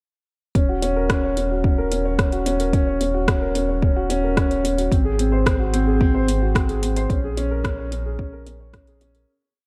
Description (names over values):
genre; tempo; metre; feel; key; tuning
piano and strings electronica; 110 BPM; 4/4; straight; Eb dorian; A4 = 440 Hz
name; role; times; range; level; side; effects
dark grand piano; riff; 0.6-9.3 s; C4 to Db5; -24 LUFS; equal; tape echo
warm sub bass; bass; 0.6-9.3 s; Eb1 to Bb1; -27 LUFS; equal; sidechain pumping
deep house drum kit; drums; 0.6-9.3 s; hi-hat, rim click; -31 LUFS; equal; none
electronic kick drum; drums; 0.6-8.8 s; none; -23 LUFS; equal; none
room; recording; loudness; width
light reverb; dark, warm production; -21 LUFS; mono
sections
0.6-9.3 drop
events
drop 0.6-9.3; fade-out 6.4-9.3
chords
0.6 Ebm7; 4.9 Ab7; 7.1 Bbm7